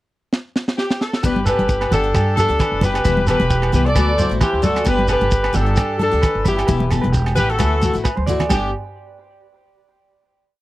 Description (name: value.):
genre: highlife guitar band.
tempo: 132 BPM.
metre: 4/4.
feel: swing 54% on 16ths.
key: G major.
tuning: A4 = 440 Hz.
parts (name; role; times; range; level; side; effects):
tight funk drum kit; drums; 0.3-8.6 s; crash cymbal, hi-hat, kick drum, rim click, snare drum; -20 LUFS; equal; none.
warm horn section; melody; 0.8-8.7 s; G4 to D5; -20 LUFS; equal; none.
clear trumpet; second line; 1.2-8.7 s; D4 to A4; -28 LUFS; left 3 dB; none.
picked steel-string acoustic guitar; accompaniment; 1.2-8.7 s; E3 to G4; -24 LUFS; left 6 dB; none.
electric guitar through a small old amp; arpeggios; 1.2-8.7 s; G4 to D5; -26 LUFS; right 2 dB; spring reverb.
upright bass; bass; 1.2-8.7 s; E1 to G2; -21 LUFS; equal; none.
shekere; percussion; 1.2-8.7 s; none; -25 LUFS; right 1 dB; none.
congas; percussion; 1.4-8.7 s; none; -24 LUFS; right 1 dB; none.
agogo bells; percussion; 1.5-8.6 s; none; -30 LUFS; right 4 dB; none.
room: little or no reverb.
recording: dry, close 1970s-style studio recording.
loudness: -15 LUFS.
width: side -17 dB against mid.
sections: 0.0-1.2 pickup bar; 1.2-8.5 A section; 8.5-10.3 final chord.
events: drum fill 0.3-1.2, 8.2-8.5.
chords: 0.0 N.C.; 1.2 G; 3.1 Em; 4.0 Dadd9; 4.9 G; 6.7 Em; 7.6 Dadd9; 8.5 G.